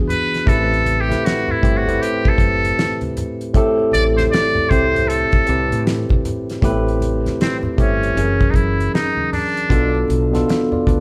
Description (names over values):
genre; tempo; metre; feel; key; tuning
R&B, neo-soul; 78 BPM; 4/4; swing 62% on 16ths; A dorian; A4 = 440 Hz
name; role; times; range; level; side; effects
barky tine electric piano; accompaniment; 0.0-11.0 s; A2 to F5; -22 LUFS; equal; overdrive
trumpet with metal mute; melody; 0.1-10.1 s; C4 to D5; -22 LUFS; equal; none
damped 70s drum kit; drums; 0.1-11.0 s; hi-hat, kick drum, snare drum; -21 LUFS; equal; none
congas; percussion; 0.1-10.8 s; none; -32 LUFS; equal; none
woody fretless electric bass; bass; 0.5-11.0 s; F#1 to A2; -24 LUFS; equal; none
room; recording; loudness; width
moderate large studio reverb, RT60 1.3 s; band playing live in one room; -17 LUFS; mono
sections
0.0-6.6 A section; 6.6-11.0 B section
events
muted trumpet solo 0.0-6.6; tine electric piano fill 10.5-11.0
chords
0.5 Am7; 8.2 F#7; 9.7 Bm7b5